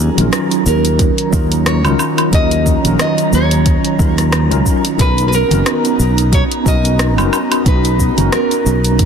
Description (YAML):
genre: sunset chillout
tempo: 90 BPM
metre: 4/4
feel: swing 56% on 16ths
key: Eb minor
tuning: A4 = 442 Hz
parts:
  - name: nylon-string guitar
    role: melody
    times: 0.0-9.1 s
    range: Ab4 to Eb5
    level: -20 LUFS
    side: right 2 dB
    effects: ping-pong delay
  - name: mellow tine electric piano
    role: accompaniment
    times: 0.0-9.1 s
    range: Gb3 to B4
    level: -18 LUFS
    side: moving between left 5 dB and right 6 dB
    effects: medium stereo tremolo, auto-pan
  - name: airy breathy pad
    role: sustained chords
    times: 0.0-9.1 s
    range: Eb3 to Bb5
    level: -20 LUFS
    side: right 2 dB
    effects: chorus
  - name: sustaining fretless electric bass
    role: bass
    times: 0.0-9.1 s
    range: F#1 to Eb2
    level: -15 LUFS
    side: equal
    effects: tube saturation
  - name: smooth R&B drum kit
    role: drums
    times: 0.2-9.1 s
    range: cabasa, hi-hat, rim click, woodblock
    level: -20 LUFS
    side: equal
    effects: overdrive
  - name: congas and bongos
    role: percussion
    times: 0.2-8.3 s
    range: none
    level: -24 LUFS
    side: left 3 dB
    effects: none
  - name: electronic kick drum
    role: drums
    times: 1.0-9.1 s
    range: none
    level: -15 LUFS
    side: equal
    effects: overdrive
room: light reverb, digital ambience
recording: dense, heavily limited modern master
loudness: -11 LUFS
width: side -7 dB against mid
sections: 0.0-9.1 A section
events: none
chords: 0.0 Ebm7; 5.0 Bmaj9